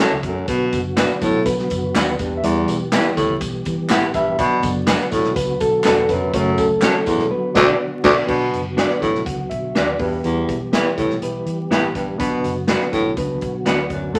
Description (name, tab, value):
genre	uptempo 1960s-style soul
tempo	123 BPM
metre	4/4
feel	straight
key	B minor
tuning	A4 = 440 Hz
part	reed electric piano	accompaniment	0.0-14.2 s	C#3 to F#5	-25 LUFS	equal	fast tremolo
part	mellow tonewheel organ	sustained chords	0.0-14.2 s	D3 to A4	-30 LUFS	equal	slow rotary speaker, chorus vibrato
part	electric guitar through a small old amp	stabs	0.0-13.8 s	B3 to D5	-23 LUFS	equal	none
part	vintage muted fingered electric bass	bass	0.0-14.2 s	E1 to E3	-32 LUFS	equal	none
part	breathy baritone saxophone	riff	0.2-14.2 s	D2 to B2	-22 LUFS	equal	none
part	swinging big-band drum kit	drums	0.2-14.2 s	crash cymbal, hi-hat, kick drum, snare drum	-27 LUFS	equal	none
part	tambourine and handclaps	percussion	0.5-7.2 s	none	-33 LUFS	equal	none
room	moderate studio reverb, RT60 0.7 s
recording	vinyl crackle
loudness	-19 LUFS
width	mono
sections	0.0-8.3 A section; 8.3-14.2 B section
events	reed electric piano solo 0.0-8.3; band accent 7.3-8.3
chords	0.5 Bm; 2.2 Em; 4.4 Bm; 6.3 F#m; 7.3 Bm; 10.0 Em; 12.2 Bm